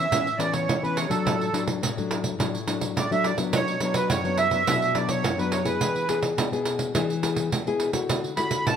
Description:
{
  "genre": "samba and choro",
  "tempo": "105 BPM",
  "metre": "4/4",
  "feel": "straight",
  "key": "unclear",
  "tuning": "A4 = 440 Hz",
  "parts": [
    { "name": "accordion", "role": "melody", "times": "0.0-8.8 s", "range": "A4 to B5", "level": "-25 LUFS", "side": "right 4 dB", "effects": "light tremolo tuning" },
    { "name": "nylon-string guitar", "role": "accompaniment", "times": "0.0-8.8 s", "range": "F#2 to G#4", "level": "-27 LUFS", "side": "left 5 dB", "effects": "none" },
    { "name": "pandeiro", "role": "percussion", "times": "0.1-8.8 s", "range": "none", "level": "-27 LUFS", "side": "right 4 dB", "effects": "none" }
  ],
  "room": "moderate large studio reverb, RT60 1.2 s",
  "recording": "none",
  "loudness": "-22 LUFS",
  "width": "side -8 dB against mid",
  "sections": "0.0-8.8 A section",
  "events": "none",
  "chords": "0.0 Aadd9; 1.3 D/A; 3.5 Bm; 5.8 E; 8.1 Dadd9"
}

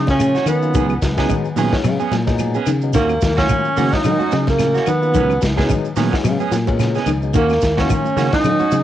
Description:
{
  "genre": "afrobeat",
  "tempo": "109 BPM",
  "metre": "4/4",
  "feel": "swing 56% on 16ths",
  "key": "Eb minor",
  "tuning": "A4 = 436 Hz",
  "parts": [
    { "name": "warm tenor saxophone", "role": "melody", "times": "0.0-8.8 s", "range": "Bb3 to Eb4", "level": "-20 LUFS", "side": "equal", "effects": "analog delay" },
    { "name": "growling trombone", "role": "second line", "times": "0.0-8.8 s", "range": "Bb3 to Eb4", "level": "-26 LUFS", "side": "right 8 dB", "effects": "none" },
    { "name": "electric guitar at the edge of break-up", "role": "arpeggios", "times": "0.0-8.8 s", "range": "Db3 to Gb3", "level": "-24 LUFS", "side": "left 8 dB", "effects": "phaser, cassette tape" },
    { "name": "fingered electric bass", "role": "bass", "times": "0.0-8.8 s", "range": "Db2 to Eb3", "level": "-20 LUFS", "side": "equal", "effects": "transformer saturation" },
    { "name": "barky tine electric piano", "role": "accompaniment", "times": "0.1-8.6 s", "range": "Gb3 to Ab5", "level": "-27 LUFS", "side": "left 9 dB", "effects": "overdrive, cassette tape" },
    { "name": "crunchy breakbeat drum kit", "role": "drums", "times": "0.1-8.8 s", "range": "hi-hat, kick drum, ride cymbal, snare drum", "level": "-22 LUFS", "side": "equal", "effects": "cassette tape" },
    { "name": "congas", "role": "percussion", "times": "0.1-8.8 s", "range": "none", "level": "-29 LUFS", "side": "right 7 dB", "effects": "none" },
    { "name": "shekere", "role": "percussion", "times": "0.1-8.8 s", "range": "none", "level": "-27 LUFS", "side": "right 4 dB", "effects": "none" },
    { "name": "claves", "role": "percussion", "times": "0.2-8.6 s", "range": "none", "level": "-35 LUFS", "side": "left 10 dB", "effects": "none" },
    { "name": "clean electric guitar", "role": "stabs", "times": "0.4-8.8 s", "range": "Gb3 to Ab4", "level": "-23 LUFS", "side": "right 7 dB", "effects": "harmonic tremolo, cassette tape" }
  ],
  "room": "light reverb, studio reverb",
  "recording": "home recording on cassette",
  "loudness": "-15 LUFS",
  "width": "side -12 dB against mid",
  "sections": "0.0-8.8 A section",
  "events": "tine electric piano fill 6.2-7.3",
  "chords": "0.0 Ebm7; 0.7 Db7sus4; 2.9 Ebm7; 5.1 Db7sus4; 7.3 Ebm7"
}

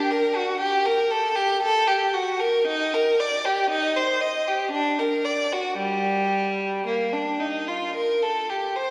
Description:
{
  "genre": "classical, baroque-style suite movement for unaccompanied violin",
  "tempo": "55-60 BPM",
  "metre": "3/4",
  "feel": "rubato",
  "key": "G minor",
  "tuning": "A4 = 440 Hz",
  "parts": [
    { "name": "rich violin", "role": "solo", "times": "0.0-8.9 s", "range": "G3 to Eb5", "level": "-24 LUFS", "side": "equal", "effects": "none" }
  ],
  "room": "wet church reverb, RT60 3.4 s",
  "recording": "recorded in a church or concert hall, studio ambience",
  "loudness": "-24 LUFS",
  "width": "mono",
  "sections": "0.0-8.9 A section",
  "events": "none",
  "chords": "none"
}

